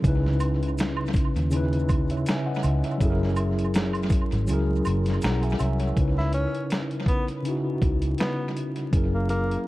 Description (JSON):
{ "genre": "lo-fi hip hop", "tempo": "81 BPM", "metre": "4/4", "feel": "swing 55% on 16ths", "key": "C# dorian", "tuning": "A4 = 440 Hz", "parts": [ { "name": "mellow tine electric piano", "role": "accompaniment", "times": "0.0-9.7 s", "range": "C#3 to A#5", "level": "-26 LUFS", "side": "equal", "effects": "medium stereo tremolo, cassette tape, tape echo" }, { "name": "vintage muted fingered electric bass", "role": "bass", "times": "0.0-9.6 s", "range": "F#1 to D#2", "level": "-26 LUFS", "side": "equal", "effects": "none" }, { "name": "dusty soul sampler-style drum kit", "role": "drums", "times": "0.0-9.7 s", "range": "finger snaps, hi-hat, kick drum, snare drum", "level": "-26 LUFS", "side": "equal", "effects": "tape echo" }, { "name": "maracas and woodblock", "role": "percussion", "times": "0.0-5.8 s", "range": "none", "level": "-39 LUFS", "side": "right 4 dB", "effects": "tape echo" }, { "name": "breathy tenor saxophone", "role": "melody", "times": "6.2-9.6 s", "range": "A#3 to E4", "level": "-31 LUFS", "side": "left 1 dB", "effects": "tape echo" } ], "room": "digital ambience", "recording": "echo-heavy mix, vinyl crackle", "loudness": "-22 LUFS", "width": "side -18 dB against mid", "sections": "0.0-6.0 A section; 6.0-9.7 B section", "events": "kick muted 4.5-6.0", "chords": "0.0 C#m9; 3.0 F#9; 6.0 C#m9; 8.9 F#9" }